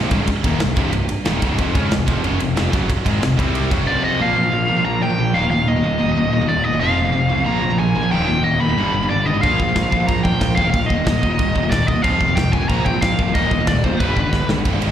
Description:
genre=heavy metal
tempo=184 BPM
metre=4/4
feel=straight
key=unclear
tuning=A4 = 440 Hz
part: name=distorted electric guitar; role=riff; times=0.0-14.9 s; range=C2 to Db4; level=-22 LUFS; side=left 6 dB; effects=distortion, slapback echo
part: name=distorted electric guitar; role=riff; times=0.0-14.6 s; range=C2 to Db4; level=-26 LUFS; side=right 1 dB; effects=distortion, slapback echo
part: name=tight distorted guitar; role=riff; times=0.0-14.9 s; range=C2 to Db4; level=-25 LUFS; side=right 10 dB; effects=distortion, slapback echo
part: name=fuzz picked electric bass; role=bass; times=0.0-14.9 s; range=C1 to Db2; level=-22 LUFS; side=right 1 dB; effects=overdrive
part: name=modern studio drum kit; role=drums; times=0.1-3.8, 9.4-14.9 s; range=crash cymbal, kick drum, ride cymbal, snare drum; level=-22 LUFS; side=equal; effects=none
part: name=high-gain lead guitar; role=melody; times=3.9-14.5 s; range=B4 to B5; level=-20 LUFS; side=equal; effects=distortion, slapback echo, digital delay
room=studio ambience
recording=live gig heard through the venue's PA, recital hall reverb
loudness=-15 LUFS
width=side -10 dB against mid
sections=0.0-4.2 A section; 4.2-14.6 B section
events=drum fill 14.3-14.6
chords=0.0 Cm; 1.6 F5; 3.4 C5; 3.7 F5; 4.2 Bb5; 5.3 Eb5; 6.8 F5; 7.5 Bb5; 8.1 Eb; 8.8 G; 9.4 Bb5; 10.6 Eb5; 12.0 F5; 12.7 Bb; 13.3 Eb5; 14.0 G

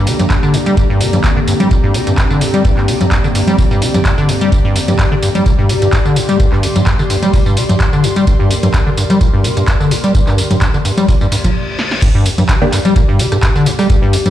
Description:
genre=acid house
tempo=128 BPM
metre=4/4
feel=swing 53% on 16ths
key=G minor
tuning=A4 = 439 Hz
part: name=warbly tape-like pad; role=sustained chords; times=0.0-14.3 s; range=G2 to Bb4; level=-20 LUFS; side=left 1 dB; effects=chorus, built-in reverb, sidechain pumping
part: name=acid bass, square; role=riff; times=0.0-14.3 s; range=F2 to G3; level=-14 LUFS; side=equal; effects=analog chorus, ping-pong delay
part: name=airy breathy pad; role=texture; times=0.0-11.6 s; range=G4 to C6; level=-22 LUFS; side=equal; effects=chorus, sidechain pumping
part: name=electro analog drum machine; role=drums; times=0.1-14.3 s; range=congas, crash cymbal, handclaps, hi-hat, rim click, snare drum, tambourine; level=-18 LUFS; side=equal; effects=none
part: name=electronic kick drum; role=drums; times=0.3-14.0 s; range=none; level=-14 LUFS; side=equal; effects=none
part: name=reverse cymbal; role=sound effects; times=11.3-12.0 s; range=none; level=-23 LUFS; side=left 5 dB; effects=none
part: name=filtered dub chord stab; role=stabs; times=12.6-12.7 s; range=Bb3 to G4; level=-19 LUFS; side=equal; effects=phaser, ping-pong delay
room=digital ambience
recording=played on a big sound system in a bare room, large studio reverb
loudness=-10 LUFS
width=side -12 dB against mid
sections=0.0-12.0 A section; 12.0-14.3 B section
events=reverse cymbal 11.3-12.0; stop 11.6-12.0; drum fill 11.8; drop 12.0-14.3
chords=0.0 Gm

